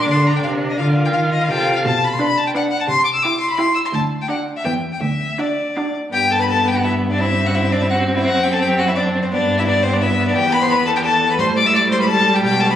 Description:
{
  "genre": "quick classical-period movement for string quartet",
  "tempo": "171 BPM",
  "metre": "3/4",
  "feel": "rubato",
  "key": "G major",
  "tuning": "A4 = 441 Hz",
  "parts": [
    { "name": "clear violin", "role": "melody", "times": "0.0-12.7 s", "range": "C5 to E6", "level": "-19 LUFS", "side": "left 3 dB", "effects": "none" },
    { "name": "rich violin", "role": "second line", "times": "0.0-12.8 s", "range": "C4 to E5", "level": "-23 LUFS", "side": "left 1 dB", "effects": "none" },
    { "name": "rich viola", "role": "accompaniment", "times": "0.0-12.8 s", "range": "G3 to F4", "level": "-21 LUFS", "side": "right 1 dB", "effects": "none" },
    { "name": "rich cello", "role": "bass", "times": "0.0-12.8 s", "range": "D2 to Eb3", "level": "-21 LUFS", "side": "right 1 dB", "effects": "none" }
  ],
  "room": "moderate scoring stage reverb, RT60 1.8 s",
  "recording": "recorded on a phone in the room, club reverb, compression",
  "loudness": "-15 LUFS",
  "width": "side -10 dB against mid",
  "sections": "0.0-6.1 A section; 6.1-12.8 B section",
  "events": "none",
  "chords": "0.0 Bb; 0.8 Bb/D; 1.8 Bm; 2.9 C; 3.9 D; 4.6 Em; 5.0 D; 6.1 G; 7.2 C5/G; 8.3 F#(b5, no3); 9.3 G; 10.3 E5; 11.4 Am11"
}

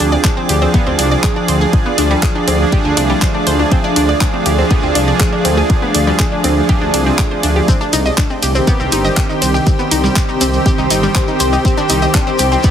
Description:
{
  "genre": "melodic techno",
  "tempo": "121 BPM",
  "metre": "4/4",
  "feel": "straight",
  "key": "unclear",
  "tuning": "A4 = 440 Hz",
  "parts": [
    { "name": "evolving wavetable pad", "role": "sustained chords", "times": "0.0-12.7 s", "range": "G4 to D6", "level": "-22 LUFS", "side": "equal", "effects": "chorus, built-in reverb, sidechain pumping" },
    { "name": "analog pluck", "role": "arpeggios", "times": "0.0-12.7 s", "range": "G3 to Eb6", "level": "-20 LUFS", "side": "left 1 dB", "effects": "chorus, sidechain pumping, dub echo" },
    { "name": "brassy analog pad", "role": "stabs", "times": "0.0-12.7 s", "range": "Eb3 to Ab4", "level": "-18 LUFS", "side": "right 2 dB", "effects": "chorus, sidechain pumping, dub echo" },
    { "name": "dark detuned saw bass", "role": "bass", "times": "0.0-12.6 s", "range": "G1 to D2", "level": "-17 LUFS", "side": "equal", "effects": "sidechain pumping" },
    { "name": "house drum kit", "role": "drums", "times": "0.0-12.7 s", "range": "handclaps, hi-hat, ride cymbal", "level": "-21 LUFS", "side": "right 1 dB", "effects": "none" },
    { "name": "granular cloud pad", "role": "texture", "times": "0.0-12.7 s", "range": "A3 to D6", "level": "-22 LUFS", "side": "equal", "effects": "built-in reverb, sidechain pumping" },
    { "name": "electronic kick drum", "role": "drums", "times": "0.2-12.7 s", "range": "none", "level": "-14 LUFS", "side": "equal", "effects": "none" },
    { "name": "shekere", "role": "percussion", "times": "7.7-12.7 s", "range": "none", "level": "-24 LUFS", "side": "left 2 dB", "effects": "none" }
  ],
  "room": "light reverb",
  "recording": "heavily compressed radio sound",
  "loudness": "-11 LUFS",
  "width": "side -9 dB against mid",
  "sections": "0.0-12.7 A section",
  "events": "none",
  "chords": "0.0 Ddim; 7.7 Cm"
}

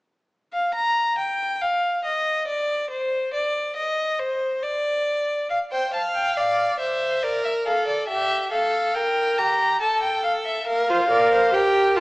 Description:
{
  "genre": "classical, baroque-style fugue for string quartet",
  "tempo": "69 BPM",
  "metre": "3/4",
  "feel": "straight",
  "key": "Bb major",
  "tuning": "A4 = 439 Hz",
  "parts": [
    { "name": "rich violin", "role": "melody", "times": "0.5-12.0 s", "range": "C5 to Bb5", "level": "-22 LUFS", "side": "left 1 dB", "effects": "none" },
    { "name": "rich violin", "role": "second line", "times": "5.7-12.0 s", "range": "G4 to F5", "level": "-24 LUFS", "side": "equal", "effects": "none" },
    { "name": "rich viola", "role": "accompaniment", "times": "10.9-12.0 s", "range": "F4 to Bb4", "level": "-19 LUFS", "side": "right 1 dB", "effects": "none" }
  ],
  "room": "wet recital hall reverb, RT60 1.6 s",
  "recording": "small speaker sound",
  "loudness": "-20 LUFS",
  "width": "side -22 dB against mid",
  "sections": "0.3-12.0 A section",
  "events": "none",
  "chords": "0.3 N.C.; 5.5 F5; 7.2 Bbmaj7; 8.1 Edim/G; 9.8 N.C.; 10.7 Bb5"
}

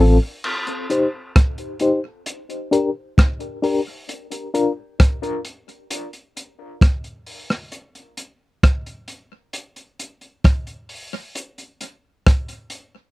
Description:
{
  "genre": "dub reggae",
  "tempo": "66 BPM",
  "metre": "4/4",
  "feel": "straight",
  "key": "C dorian",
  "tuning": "A4 = 440 Hz",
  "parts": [
    { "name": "reed electric piano", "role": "stabs", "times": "0.0-4.7 s", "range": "C4 to C5", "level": "-20 LUFS", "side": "left 3 dB", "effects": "fast tremolo, low-pass filter, tape echo" },
    { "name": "crunchy breakbeat drum kit", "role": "drums", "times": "0.4-12.9 s", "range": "crash cymbal, hi-hat, kick drum, rim click", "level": "-17 LUFS", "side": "equal", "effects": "none" }
  ],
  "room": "little or no reverb",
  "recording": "dry, close 1970s-style studio recording",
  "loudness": "-18 LUFS",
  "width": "side -19 dB against mid",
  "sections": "0.4-13.1 A section",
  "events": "break 4.1-13.1",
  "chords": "0.4 Cm; 2.3 Gm; 4.1 Bb; 5.9 N.C."
}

